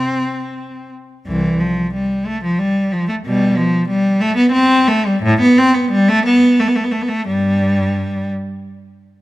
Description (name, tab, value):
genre	classical, baroque-style suite movement for unaccompanied cello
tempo	60 BPM (dotted quarters)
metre	6/8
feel	uneven beats, rubato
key	C major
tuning	A4 = 440 Hz
part	rich cello	solo	0.0-8.3 s	C2 to C4	-13 LUFS	equal	none
room	moderate scoring stage reverb, RT60 2.0 s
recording	close, detailed microphones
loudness	-13 LUFS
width	side -17 dB against mid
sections	0.0-1.3 A section; 1.3-9.2 B section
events	none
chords	none